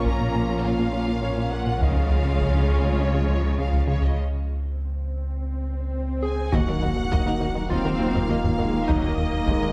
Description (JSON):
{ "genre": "cinematic, hybrid orchestral and electronic film score", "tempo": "102 BPM", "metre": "4/4", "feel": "straight", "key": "unclear", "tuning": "A4 = 441 Hz", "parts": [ { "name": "warm symphonic violin section", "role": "melody", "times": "0.0-9.7 s", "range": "Gb4 to Bb5", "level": "-37 LUFS", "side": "equal", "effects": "none" }, { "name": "rich symphonic violin section", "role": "second line", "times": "0.0-9.7 s", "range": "F4 to Ab5", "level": "-36 LUFS", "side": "equal", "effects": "none" }, { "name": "warm symphonic viola section", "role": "accompaniment", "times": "0.0-4.1, 7.7-9.7 s", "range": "Gb3 to Db4", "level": "-34 LUFS", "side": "equal", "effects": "none" }, { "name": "hollow soft pad", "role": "sustained chords", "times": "0.0-9.7 s", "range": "F3 to Bb4", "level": "-37 LUFS", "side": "equal", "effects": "none" }, { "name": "mellow French horn section", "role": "sustained chords", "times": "0.0-9.7 s", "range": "Bb3 to F4", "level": "-36 LUFS", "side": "equal", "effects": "none" }, { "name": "warm trombone section", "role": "sustained chords", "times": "0.0-9.7 s", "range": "Eb3 to Bb3", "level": "-35 LUFS", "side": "equal", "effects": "none" }, { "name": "warm chamber double bass section", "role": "bass", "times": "0.0-9.5 s", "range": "Bb1 to Eb2", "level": "-32 LUFS", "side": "equal", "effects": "none" }, { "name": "warm sub bass", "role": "bass", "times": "0.0-9.7 s", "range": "Eb1 to Db2", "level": "-30 LUFS", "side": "equal", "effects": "none" }, { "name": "warm symphonic cello section", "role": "bass", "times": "0.0-9.7 s", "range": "Eb2 to Db3", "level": "-34 LUFS", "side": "equal", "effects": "none" }, { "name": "clear grand piano", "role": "texture", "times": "0.0-9.7 s", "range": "Db4 to F5", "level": "-43 LUFS", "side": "equal", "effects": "none" }, { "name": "soft round pluck", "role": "arpeggios", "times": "0.1-9.7 s", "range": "Db3 to Bb4", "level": "-38 LUFS", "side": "equal", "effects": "none" }, { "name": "plucky analog bass", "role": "riff", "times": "0.1-9.7 s", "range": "Db2 to Bb3", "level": "-30 LUFS", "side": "equal", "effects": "none" }, { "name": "taiko ensemble", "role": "drums", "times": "0.1-3.0, 6.5-9.7 s", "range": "none", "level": "-30 LUFS", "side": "equal", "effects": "none" }, { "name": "swell and impact", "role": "sound effects", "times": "5.1-8.9 s", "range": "none", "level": "-36 LUFS", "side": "equal", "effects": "none" }, { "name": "soft struck synth lead", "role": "melody", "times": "6.2-9.7 s", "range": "Eb4 to Ab4", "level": "-33 LUFS", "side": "equal", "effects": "chorus" } ], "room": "moderate concert hall reverb, RT60 1.9 s", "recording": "none", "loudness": "-24 LUFS", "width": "mono", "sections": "0.0-6.5 A section; 6.5-9.7 B section", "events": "break 4.2-6.5; swell 5.1-6.5; drum fill 5.9-6.5; impact 6.5-8.9", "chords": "0.0 Bbm; 1.8 Db; 6.5 Ebmadd9", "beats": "0.06 0.65 1.24 | 1.82 2.41 3.00 3.59 | 4.18 4.76 5.35 5.94 | 6.53 7.12 7.71 8.29 | 8.88 9.47" }